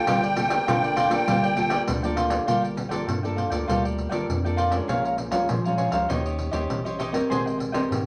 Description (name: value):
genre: samba and choro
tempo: 99 BPM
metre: 4/4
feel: straight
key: G minor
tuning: A4 = 442 Hz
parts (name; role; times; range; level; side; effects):
- musette accordion; melody; 0.0-1.8 s; G5; -26 LUFS; equal; none
- cavaquinho; accompaniment; 0.0-8.0 s; Eb4 to Bb5; -30 LUFS; equal; none
- nylon-string guitar; accompaniment; 0.0-8.1 s; Bb2 to C5; -30 LUFS; equal; none
- round analog bass; bass; 0.1-8.1 s; G1 to Bb2; -33 LUFS; equal; none
- pandeiro; percussion; 0.1-8.1 s; none; -32 LUFS; equal; none
room: wet studio reverb, RT60 0.6 s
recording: vinyl crackle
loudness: -24 LUFS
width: mono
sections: 0.0-2.5 A section; 2.5-8.1 B section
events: none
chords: 0.0 Gm9; 4.9 Bbm7; 6.1 Eb6; 7.3 Abmaj9